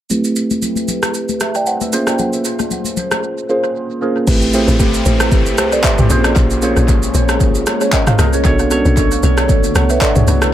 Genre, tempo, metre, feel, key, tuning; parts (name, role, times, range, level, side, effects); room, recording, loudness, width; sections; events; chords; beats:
amapiano; 115 BPM; 4/4; swing 55% on 16ths; A4 = 443 Hz
tine electric piano; accompaniment; 0.1-10.5 s; A3 to A5; -16 LUFS; right 2 dB; phaser, low-pass filter, tape echo
deep house drum kit; drums; 0.1-10.5 s; crash cymbal, handclaps, kick drum, rim click, shaker, toms; -16 LUFS; equal; tape echo
congas; percussion; 0.1-3.2 s; -24 LUFS; left 8 dB
ethereal airy pad; sustained chords; 5.2-10.5 s; D3 to G4; -24 LUFS; left 4 dB; ensemble chorus, built-in reverb, sidechain pumping
woody log drum bass; bass; 4.3-10.5 s; A1 to C2; -16 LUFS; equal
downlifter; sound effects; 4.3-8.4 s; -26 LUFS; left 2 dB
little or no reverb; echo-heavy mix; -12 LUFS; side -12 dB against mid
0.1-4.3 A section; 4.3-10.5 B section
filter sweep on tine electric piano 0.1-4.3; drums muted 3.2-4.3; drop 4.3-10.5
0.1 Am9; 1.9 Bbm9; 4.3 Am9; 6.1 Bbm9; 8.4 Bm9
| 0.10 0.62 1.14 1.67 | 2.19 2.71 3.23 3.75 | 4.28 4.80 5.32 5.84 | 6.36 6.88 7.41 7.93 | 8.45 8.97 9.49 10.01 | 10.54